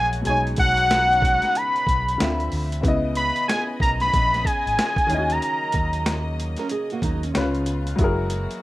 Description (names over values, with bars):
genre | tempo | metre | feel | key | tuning
R&B, neo-soul | 93 BPM | 4/4 | swing 63% on 16ths | C# dorian | A4 = 441 Hz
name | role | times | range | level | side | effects
fat analog lead | melody | 0.0-6.3 s | F#5 to B5 | -21 LUFS | equal | none
warm upright piano | accompaniment | 0.0-8.6 s | B2 to E5 | -28 LUFS | left 2 dB | none
warm studio string section | sustained chords | 0.0-8.6 s | C#3 to E5 | -36 LUFS | left 1 dB | none
mellow fretless electric bass | bass | 0.0-8.5 s | F#1 to D#2 | -26 LUFS | equal | none
boom bap sampler-style drum kit | drums | 0.1-8.6 s | hi-hat, kick drum, snare drum | -25 LUFS | equal | none
nylon-string guitar | second line | 6.6-7.5 s | F#3 to A#4 | -30 LUFS | right 4 dB | tape echo
room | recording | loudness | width
light reverb, small room ambience | rough home demo mix | -19 LUFS | side -17 dB against mid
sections
0.0-8.6 A section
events
none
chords
0.3 B69; 2.2 Dm9; 2.8 C#m9; 5.1 D#m7; 7.3 C#7; 8.0 F#9